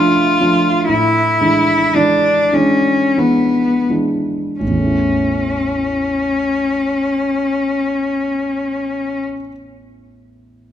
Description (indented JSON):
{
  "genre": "classical, romantic duo for cello and grand piano",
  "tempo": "39-62 BPM",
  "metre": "3/4",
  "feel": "rubato",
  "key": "A major",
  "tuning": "A4 = 440 Hz",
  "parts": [
    { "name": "clear cello", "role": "melody", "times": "0.0-9.2 s", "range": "B3 to F4", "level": "-15 LUFS", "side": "left 2 dB", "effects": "none" },
    { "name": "warm concert grand piano", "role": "accompaniment", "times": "0.0-10.7 s", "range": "A1 to E4", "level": "-18 LUFS", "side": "right 2 dB", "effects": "none" }
  ],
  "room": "moderate scoring stage reverb, RT60 2.0 s",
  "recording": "close, detailed microphones",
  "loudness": "-14 LUFS",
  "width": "side -10 dB against mid",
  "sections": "0.0-4.6 A section; 4.6-8.5 B section",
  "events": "slowing down 0.0-4.6",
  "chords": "0.0 Dm/A; 0.9 E7/A; 4.6 A"
}